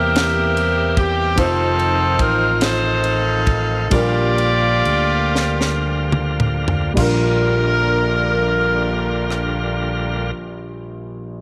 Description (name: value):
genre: slow gospel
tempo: 34-49 BPM (dotted quarters)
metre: 6/8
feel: straight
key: Bb major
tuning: A4 = 442 Hz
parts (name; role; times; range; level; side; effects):
- clear saxophone section; melody; 0.0-10.3 s; C4 to D5; -22 LUFS; equal; none
- dark concert grand piano; accompaniment; 0.0-11.4 s; Bb1 to C5; -26 LUFS; equal; none
- bright tonewheel organ; sustained chords; 0.0-10.3 s; D3 to G4; -28 LUFS; equal; fast rotary speaker, overdrive
- fingered electric bass; bass; 0.0-10.3 s; F1 to E2; -24 LUFS; equal; none
- tight funk drum kit; drums; 0.2-9.6 s; crash cymbal, kick drum, ride cymbal, rim click, snare drum, toms; -24 LUFS; equal; none
room: moderate echo chamber reverb, RT60 2.3 s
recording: none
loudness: -18 LUFS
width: mono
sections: 0.0-7.0 A section; 7.0-10.5 B section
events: slowing down 1.4-7.0; drum fill 5.3-7.0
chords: 0.0 C7; 1.4 F7; 3.9 Bb6